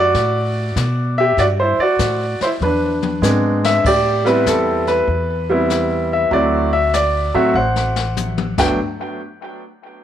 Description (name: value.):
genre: jazz piano trio.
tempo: 97 BPM.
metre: 4/4.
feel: swing 66% on 8ths.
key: G major.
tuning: A4 = 440 Hz.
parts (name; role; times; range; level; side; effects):
clear grand piano; melody; 0.0-8.8 s; F#3 to G5; -16 LUFS; equal; tape echo.
upright bass; bass; 0.0-8.8 s; G1 to B2; -22 LUFS; equal; none.
jazz brush drum kit; drums; 0.1-8.7 s; brushed snare drum, crash cymbal, hi-hat, kick drum, snare drum, toms; -25 LUFS; left 6 dB; none.
room: moderate plate reverb, RT60 1.2 s, studio reverb.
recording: 1960s-style stereo.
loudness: -15 LUFS.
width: side -10 dB against mid.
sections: 0.0-3.8 A section; 3.8-8.8 B section; 8.8-10.0 C section.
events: drum fill 2.6-3.8, 7.6-8.8.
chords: 0.0 Gmaj9; 2.6 E7b13; 3.8 Am7; 6.3 D9; 8.5 Gmaj9; 8.8 N.C..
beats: 0.15 0.77 | 1.38 2.00 2.62 3.23 | 3.85 4.47 5.08 5.70 | 6.32 6.93 7.55 8.17.